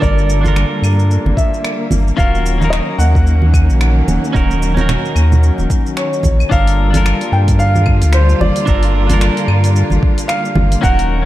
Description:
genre	sunset chillout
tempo	111 BPM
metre	4/4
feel	swing 58% on 16ths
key	unclear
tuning	A4 = 439 Hz
part	clear baby grand piano	melody	0.0-11.3 s	C5 to G5	-21 LUFS	right 1 dB	ping-pong delay
part	clean electric guitar	accompaniment	0.0-11.3 s	Db4 to Bb4	-22 LUFS	moving between left 6 dB and right 5 dB	auto-pan, ping-pong delay
part	bright studio string section	sustained chords	0.0-11.3 s	D3 to F4	-21 LUFS	left 1 dB	none
part	warm sub bass	bass	0.0-11.3 s	Eb1 to G2	-13 LUFS	equal	none
part	deep house drum kit	drums	0.0-11.1 s	claves, finger snaps, hi-hat, shaker	-26 LUFS	equal	overdrive
part	electronic kick drum	drums	0.0-11.0 s	none	-15 LUFS	equal	overdrive
part	congas	percussion	0.4-10.7 s	none	-20 LUFS	right 2 dB	none
room	light reverb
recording	dark, warm production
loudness	-11 LUFS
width	side -15 dB against mid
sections	0.0-6.5 A section; 6.5-11.3 B section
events	none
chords	0.0 Gm9; 2.2 Ebm7; 6.5 Gm9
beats	| 0.02 0.56 1.10 1.65 | 2.19 2.73 3.27 3.81 | 4.35 4.89 5.43 5.97 | 6.51 7.05 7.59 8.13 | 8.67 9.21 9.75 10.29 | 10.83

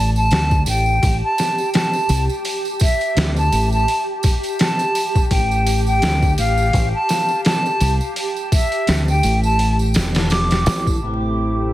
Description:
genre	trip hop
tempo	84 BPM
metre	4/4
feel	swing 56% on 16ths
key	A minor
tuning	A4 = 440 Hz
part	bright silver concert flute	melody	0.0-11.0 s	E5 to D6	-20 LUFS	equal	dub echo
part	deep dub fingered electric bass	bass	0.0-11.7 s	E1 to D2	-18 LUFS	equal	none
part	bowed-like drone	texture	0.2-11.0 s	G4	-28 LUFS	right 1 dB	built-in reverb
part	tambourine	percussion	0.2-11.0 s	none	-32 LUFS	right 6 dB	none
part	trip hop sampler-style drum kit	drums	0.3-11.0 s	hi-hat, kick drum, snare drum	-19 LUFS	equal	none
part	bright chamber string section	sustained chords	11.0-11.7 s	C3 to G4	-22 LUFS	equal	vintage 12-bit sampler grit, low-pass filter
room	light reverb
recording	heavily compressed radio sound, multiband compression, vinyl crackle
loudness	-15 LUFS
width	side -15 dB against mid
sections	0.0-11.0 A section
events	none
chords	0.0 A7(no3); 5.3 N.C.; 11.0 Am7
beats	0.31 1.02 1.74 | 2.45 3.17 3.88 4.60 | 5.31 6.03 6.74 7.45 | 8.17 8.88 9.60 10.31 | 11.03

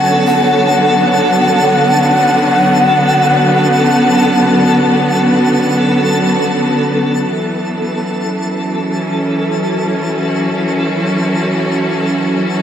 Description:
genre	ambient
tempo	free time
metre	none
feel	none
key	F# minor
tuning	A4 = 441 Hz
part	breathy bright long shakuhachi	melody	0.0-6.2 s	F#5	-15 LUFS	equal	tape echo
part	clear studio string section	sustained chords	0.0-12.6 s	D3 to F#4	-14 LUFS	equal	none
part	analog drone	drone	0.0-12.6 s	F#3 to C#4	-19 LUFS	equal	chorus
part	twinkling granular texture	texture	0.0-12.6 s	A4	-18 LUFS	right 1 dB	built-in reverb
room	wet shimmer reverb, RT60 6.8 s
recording	none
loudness	-11 LUFS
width	side -9 dB against mid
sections	0.0-7.3 A section; 7.3-12.6 B section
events	none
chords	0.0 Bm7; 7.3 F#m7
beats	free time

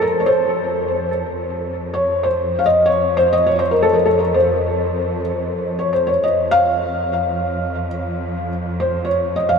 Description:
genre	Persian modal ensemble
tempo	free time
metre	none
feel	none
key	F dastgah homayun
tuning	A4 = 440 Hz
part	felt-muted upright piano	melody	0.0-9.6 s	A4 to F5	-16 LUFS	left 1 dB	wide subtle chorus, ping-pong delay
part	rich studio cello section	drone	0.0-9.6 s	F2	-25 LUFS	equal	none
room	wet huge ambient reverb, RT60 7.7 s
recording	dreamy mix soaked in reverb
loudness	-16 LUFS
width	side -6 dB against mid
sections	0.0-9.6 A section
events	none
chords	none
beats	free time

